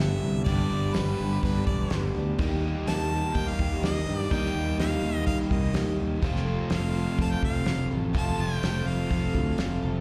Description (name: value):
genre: folk rock and heartland rock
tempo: 125 BPM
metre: 4/4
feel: straight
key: unclear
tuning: A4 = 440 Hz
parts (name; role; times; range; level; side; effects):
- bright harmonica; melody; 0.0-9.8 s; B4 to A5; -37 LUFS; equal; slapback echo
- picked plugged-in twelve-string acoustic guitar; accompaniment; 0.0-10.0 s; G2 to A4; -37 LUFS; equal; slapback echo
- overdriven electric guitar; riff; 0.0-10.0 s; F2 to G4; -34 LUFS; equal; slapback echo
- fingered electric bass; bass; 0.0-10.0 s; E1 to G2; -30 LUFS; equal; none
- damped 70s drum kit; drums; 0.0-9.7 s; hi-hat, kick drum, snare drum; -31 LUFS; equal; none
room: little or no reverb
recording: live gig heard through the venue's PA, recital hall reverb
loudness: -27 LUFS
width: mono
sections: 0.0-10.0 A section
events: none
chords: 0.0 G; 2.4 Eb; 6.2 F